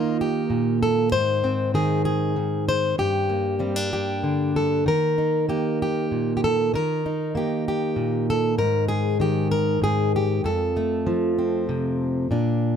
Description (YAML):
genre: folk, solo fingerstyle acoustic guitar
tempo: 64 BPM (dotted quarters)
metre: 6/8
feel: straight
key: unclear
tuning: A4 = 439 Hz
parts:
  - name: fingerpicked plugged-in steel-string acoustic guitar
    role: solo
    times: 0.0-12.8 s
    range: F2 to C5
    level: -20 LUFS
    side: equal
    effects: none
room: light reverb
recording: close, detailed microphones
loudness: -20 LUFS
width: side -8 dB against mid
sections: 0.0-12.3 A section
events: none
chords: 0.0 Eb; 1.1 Ab; 3.0 Gm; 4.9 Eb; 8.6 Ab5; 10.4 F